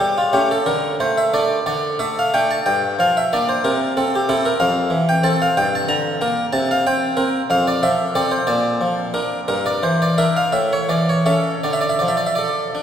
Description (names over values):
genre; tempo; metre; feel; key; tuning
classical, baroque-style suite movement for harpsichord; 52-63 BPM (dotted quarters); 6/8; rubato; D minor; A4 = 445 Hz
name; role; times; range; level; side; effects
harpsichord; solo; 0.0-12.8 s; F2 to Bb5; -16 LUFS; equal; none
room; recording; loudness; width
wet cathedral reverb, RT60 4.3 s; heard from further back in the room; -16 LUFS; side -9 dB against mid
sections
0.0-12.8 A section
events
none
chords
0.0 A7; 0.7 D5; 2.7 Gm7; 3.6 C; 4.6 Fmaj7; 5.6 Gm; 6.5 C5; 7.5 F; 8.5 Bb; 9.5 Em7b5/G; 10.5 A; 11.6 Dm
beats
0.66 | 1.67 2.66 | 3.64 4.61 | 5.56 6.52 | 7.49 8.46 | 9.48 10.54 | 11.64 12.76